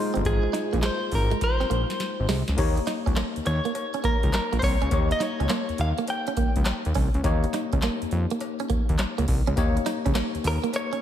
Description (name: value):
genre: R&B, new jack swing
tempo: 103 BPM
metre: 4/4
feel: swing 66% on 16ths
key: unclear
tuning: A4 = 440 Hz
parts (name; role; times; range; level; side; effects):
- tine electric piano; accompaniment; 0.0-11.0 s; Ab3 to Db5; -31 LUFS; left 5 dB; wide subtle chorus
- direct-recorded clean electric guitar; riff; 0.1-11.0 s; Ab3 to Eb4; -31 LUFS; right 6 dB; wide subtle chorus
- fat analog bass; bass; 0.2-10.6 s; G1 to F2; -26 LUFS; equal; none
- booming analog drum machine; drums; 0.2-11.0 s; crash cymbal, handclaps, hi-hat, kick drum, snare drum, tambourine; -27 LUFS; equal; none
- direct-recorded clean electric guitar; melody; 0.3-6.6, 10.5-11.0 s; Ab4 to G5; -29 LUFS; equal; tremolo, tape echo
- cowbell; percussion; 2.6-10.9 s; none; -42 LUFS; left 3 dB; none
room: moderate plate reverb, RT60 2.1 s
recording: dreamy mix soaked in reverb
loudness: -22 LUFS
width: side -10 dB against mid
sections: 0.0-2.6 A section; 2.6-11.0 B section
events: drum fill 1.4-2.6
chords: 0.0 Ab6; 2.6 Eb7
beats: | 0.25 0.84 1.42 2.00 | 2.58 3.17 3.75 4.33 | 4.91 5.50 6.08 6.66 | 7.24 7.83 8.41 8.99 | 9.57 10.16 10.74